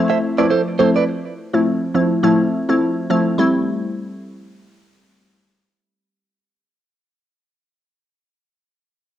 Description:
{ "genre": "afrobeats", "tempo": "104 BPM", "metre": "4/4", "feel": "swing 58% on 16ths", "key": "A minor", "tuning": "A4 = 441 Hz", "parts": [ { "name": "glassy wavetable pluck", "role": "accompaniment", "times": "0.0-6.8 s", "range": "F3 to E4", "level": "-16 LUFS", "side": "left 1 dB", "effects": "chorus, cassette tape" }, { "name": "direct-recorded clean electric guitar", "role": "riff", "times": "0.1-1.0 s", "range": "A4 to E5", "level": "-18 LUFS", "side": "right 5 dB", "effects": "cassette tape, analog delay" } ], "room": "moderate spring reverb, RT60 1.6 s, digital ambience", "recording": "home recording on cassette", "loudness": "-15 LUFS", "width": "side -11 dB against mid", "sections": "0.0-3.4 A section; 3.4-5.7 B section", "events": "none", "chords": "0.0 Fmaj7; 3.4 Am7" }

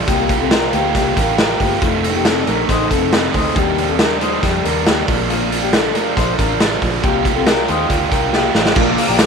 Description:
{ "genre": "jangly indie pop", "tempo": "138 BPM", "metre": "4/4", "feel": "straight", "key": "unclear", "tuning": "A4 = 439 Hz", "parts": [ { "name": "raw garage guitar", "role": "accompaniment", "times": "0.0-9.3 s", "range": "F2 to G4", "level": "-19 LUFS", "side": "right 14 dB", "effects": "overdrive" }, { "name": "mellow electric guitar", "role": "arpeggios", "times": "0.0-9.3 s", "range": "A3 to D5", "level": "-20 LUFS", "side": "left 12 dB", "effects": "tape echo" }, { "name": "vintage muted fingered electric bass", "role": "bass", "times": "0.0-9.3 s", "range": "F1 to F2", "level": "-25 LUFS", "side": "equal", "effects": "none" }, { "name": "raw garage drum kit", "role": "drums", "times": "0.1-9.3 s", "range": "crash cymbal, hi-hat, kick drum, snare drum", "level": "-17 LUFS", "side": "equal", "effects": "none" }, { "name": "warm analog keys", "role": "accompaniment", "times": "8.8-9.3 s", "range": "Bb3 to Bb4", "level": "-21 LUFS", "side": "right 16 dB", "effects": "chorus" }, { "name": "phased analog pad", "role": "sustained chords", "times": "8.8-9.3 s", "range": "Bb4 to D6", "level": "-22 LUFS", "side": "equal", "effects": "phaser, chorus" }, { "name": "tambourine", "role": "percussion", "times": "9.0-9.3 s", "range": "none", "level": "-30 LUFS", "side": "left 18 dB", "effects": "none" } ], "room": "moderate spring reverb, RT60 1.5 s, small room reverb", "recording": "1960s-style stereo with parts hard left and right", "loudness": "-13 LUFS", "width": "side -5 dB against mid", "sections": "0.0-8.8 A section", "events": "drum fill 8.3-8.8", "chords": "0.1 C7sus4; 1.8 F7; 3.6 Ebmaj7; 5.1 Bb; 7.0 C7sus4" }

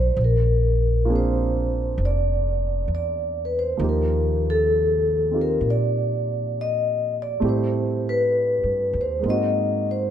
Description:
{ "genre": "jazz ballad", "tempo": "66 BPM", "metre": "4/4", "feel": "swing 67% on 8ths", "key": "unclear", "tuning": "A4 = 437 Hz", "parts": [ { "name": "vibraphone with medium mallets", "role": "melody", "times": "0.0-10.1 s", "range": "A4 to Eb5", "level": "-23 LUFS", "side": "left 2 dB", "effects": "none" }, { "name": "dark upright piano", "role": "accompaniment", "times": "0.0-10.1 s", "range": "B2 to F#5", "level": "-28 LUFS", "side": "right 4 dB", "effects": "none" }, { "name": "upright bass", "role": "bass", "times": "0.0-10.1 s", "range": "F1 to Bb2", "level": "-24 LUFS", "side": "equal", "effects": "none" } ], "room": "light reverb", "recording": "close, detailed microphones", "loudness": "-20 LUFS", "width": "side -10 dB against mid", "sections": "0.0-10.1 A section", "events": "none", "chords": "0.2 Bb9; 3.8 Ebmaj9; 7.4 Am7; 9.2 Ab9" }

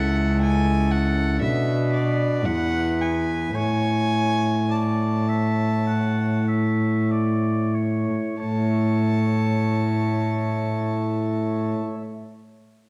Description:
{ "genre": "classical, baroque-style sonata movement with continuo", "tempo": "46-63 BPM", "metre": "4/4", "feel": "straight", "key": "A major", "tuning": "A4 = 439 Hz", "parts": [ { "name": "clear oboe", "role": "melody", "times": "0.0-11.7 s", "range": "A4 to F#5", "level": "-35 LUFS", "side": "equal", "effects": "none" }, { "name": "rich violin", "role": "second line", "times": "0.0-11.7 s", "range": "D5 to A5", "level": "-32 LUFS", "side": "equal", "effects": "none" }, { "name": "pipe organ, flutes", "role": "accompaniment", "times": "0.0-12.0 s", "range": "C#2 to E5", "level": "-28 LUFS", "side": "equal", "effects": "none" }, { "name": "rich cello", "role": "bass", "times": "0.0-11.7 s", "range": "C#2 to B2", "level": "-25 LUFS", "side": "equal", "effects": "none" } ], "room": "wet recital hall reverb, RT60 1.6 s", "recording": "dark, warm production", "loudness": "-23 LUFS", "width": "mono", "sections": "0.0-8.4 A section; 8.4-12.9 B section", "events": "slowing down 0.0-8.4", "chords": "0.0 A/C#; 1.4 Bm; 2.5 E; 3.6 A" }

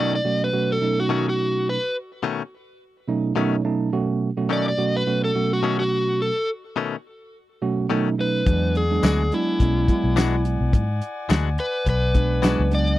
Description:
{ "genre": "straight-eighth soul blues", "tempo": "106 BPM", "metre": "4/4", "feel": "swing 56% on 16ths", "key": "unclear", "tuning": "A4 = 445 Hz", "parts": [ { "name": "overdriven slide guitar", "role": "melody", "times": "0.0-13.0 s", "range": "E4 to D5", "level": "-24 LUFS", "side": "left 1 dB", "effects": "none" }, { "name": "tine electric piano", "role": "accompaniment", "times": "0.0-13.0 s", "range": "B2 to A5", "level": "-23 LUFS", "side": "right 4 dB", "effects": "none" }, { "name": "direct-recorded clean electric guitar", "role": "stabs", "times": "0.0-12.6 s", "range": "B2 to F#4", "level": "-25 LUFS", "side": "left 7 dB", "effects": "none" }, { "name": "warm horn section", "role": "sustained chords", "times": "8.5-13.0 s", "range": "D5 to G#5", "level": "-34 LUFS", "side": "left 3 dB", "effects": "none" }, { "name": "vintage muted fingered electric bass", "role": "bass", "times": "8.5-13.0 s", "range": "B1 to G#2", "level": "-22 LUFS", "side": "left 1 dB", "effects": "none" }, { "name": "warm soul drum kit", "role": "drums", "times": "8.5-12.9 s", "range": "hi-hat, kick drum, snare drum, tambourine", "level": "-20 LUFS", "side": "left 1 dB", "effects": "none" } ], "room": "little or no reverb", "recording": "dry, close 1970s-style studio recording", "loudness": "-20 LUFS", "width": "side -15 dB against mid", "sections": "0.0-13.0 A section", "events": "tine electric piano fill 3.1-3.9", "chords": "0.0 B9; 8.5 E9" }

